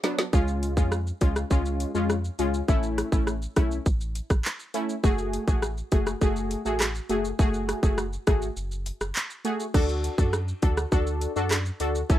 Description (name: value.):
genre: dancehall.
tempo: 102 BPM.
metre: 4/4.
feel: straight.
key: F# minor.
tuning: A4 = 441 Hz.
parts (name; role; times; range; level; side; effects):
synth brass stab; accompaniment; 0.0-12.2 s; F#3 to A4; -28 LUFS; left 1 dB; chorus, sidechain pumping, plate reverb.
island pop drum kit; drums; 0.0-12.2 s; crash cymbal, handclaps, hi-hat, kick drum, rim click, shaker, snare drum; -24 LUFS; equal; overdrive.
sub bass with octave; bass; 0.3-12.2 s; F#1 to F#2; -30 LUFS; equal; none.
room: light reverb.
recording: rough home demo mix.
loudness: -24 LUFS.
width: side -13 dB against mid.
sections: 0.3-9.7 A section; 9.7-12.2 B section.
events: drum fill 0.0-0.3; break 8.6-9.7.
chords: 0.3 C#; 2.7 A; 5.0 F#madd9; 9.7 D.